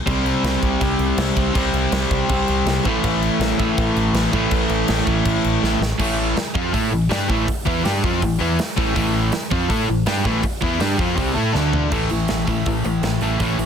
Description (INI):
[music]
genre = punk rock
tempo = 162 BPM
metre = 4/4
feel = straight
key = A minor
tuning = A4 = 443 Hz
[part]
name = biting overdriven guitar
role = riff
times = 0.1-13.7 s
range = A2 to A4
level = -26 LUFS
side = right 1 dB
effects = none
[part]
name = distorted electric guitar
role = riff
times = 0.1-13.7 s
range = A2 to A4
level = -23 LUFS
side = left 10 dB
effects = distortion
[part]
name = overdriven electric guitar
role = riff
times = 0.1-13.7 s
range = A2 to A4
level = -24 LUFS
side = right 10 dB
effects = none
[part]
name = deep dub picked electric bass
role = bass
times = 0.1-13.7 s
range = A1 to A2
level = -24 LUFS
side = equal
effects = none
[part]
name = big rock drum kit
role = drums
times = 0.1-13.7 s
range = crash cymbal, hi-hat, kick drum, snare drum, toms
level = -24 LUFS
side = equal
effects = none
[sound]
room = light reverb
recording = dense, heavily limited modern master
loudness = -17 LUFS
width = side -8 dB against mid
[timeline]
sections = 0.0-6.0 A section; 6.0-11.9 B section; 11.9-13.7 C section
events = drum fill 5.6-6.0, 11.5-11.9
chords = 0.1 C5; 2.8 A5; 6.0 Am; 11.5 D5; 11.9 A5